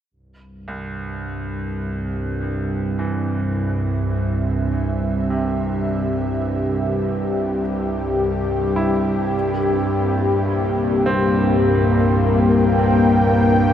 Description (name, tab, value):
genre	dark ambient drone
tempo	52 BPM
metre	4/4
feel	straight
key	C major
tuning	A4 = 440 Hz
part	dark analog pad	sustained chords	2.4-13.7 s	Bb3 to G5	-20 LUFS	left 2 dB	chorus, shimmer reverb
part	bowed-like drone	drone	0.6-13.7 s	C2 to G2	-21 LUFS	right 1 dB	built-in reverb
part	bright baby grand piano	arpeggios	0.7-13.7 s	C2 to E4	-29 LUFS	right 2 dB	diffuse ambient delay, shimmer reverb
room	wet huge ambient reverb, RT60 8.8 s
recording	dreamy mix soaked in reverb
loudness	-18 LUFS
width	side -10 dB against mid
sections	0.1-13.7 A section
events	fade-in on analog synth pad 0.1-13.7; fade-in on grand piano 0.1-13.7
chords	0.1 C; 9.3 C7